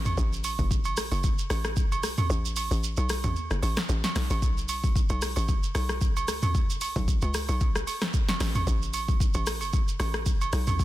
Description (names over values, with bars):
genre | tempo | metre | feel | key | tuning
amapiano | 113 BPM | 4/4 | swing 55% on 16ths | F# minor | A4 = 444 Hz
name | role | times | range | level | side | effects
tight log drum bass | bass | 0.0-10.8 s | F#1 to C#2 | -29 LUFS | equal | none
deep house drum kit | drums | 0.1-10.8 s | hi-hat, kick drum, rim click, shaker, snare drum, toms | -26 LUFS | equal | soft clipping on snare
agogo bells | percussion | 0.1-10.8 s | none | -34 LUFS | right 5 dB | none
room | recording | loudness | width
digital ambience | dense, heavily limited modern master | -24 LUFS | side -15 dB against mid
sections
0.0-10.8 A section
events
kick muted 2.3-4.4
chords
none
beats
| 0.17 0.71 1.24 1.77 | 2.30 2.83 3.36 3.89 | 4.42 4.95 5.49 6.02 | 6.55 7.08 7.61 8.14 | 8.67 9.20 9.73 10.26 | 10.79